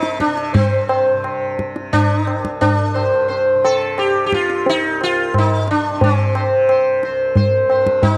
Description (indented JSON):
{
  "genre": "indian classical, Hindustani",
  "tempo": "88 BPM",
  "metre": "4/4",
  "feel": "straight",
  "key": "C raga kafi",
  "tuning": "A4 = 440 Hz",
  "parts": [
    { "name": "sitar", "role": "melody", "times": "0.0-8.2 s", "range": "C4 to C5", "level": "-19 LUFS", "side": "equal", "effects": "tape echo" },
    { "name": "tanpura", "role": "drone", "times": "0.0-8.2 s", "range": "C2 to C3", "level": "-30 LUFS", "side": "equal", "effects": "none" },
    { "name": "tabla", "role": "percussion", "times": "0.0-8.2 s", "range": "none", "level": "-21 LUFS", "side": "equal", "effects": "none" }
  ],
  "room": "small room ambience",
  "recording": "dry, close 1970s-style studio recording",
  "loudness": "-17 LUFS",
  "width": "mono",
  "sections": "0.5-8.2 A section",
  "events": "speeding up 0.0-8.2",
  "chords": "none",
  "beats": "| 0.55 1.24 1.93 2.62 | 3.30 3.98 4.67 5.34 | 6.02 6.70 7.37 8.04"
}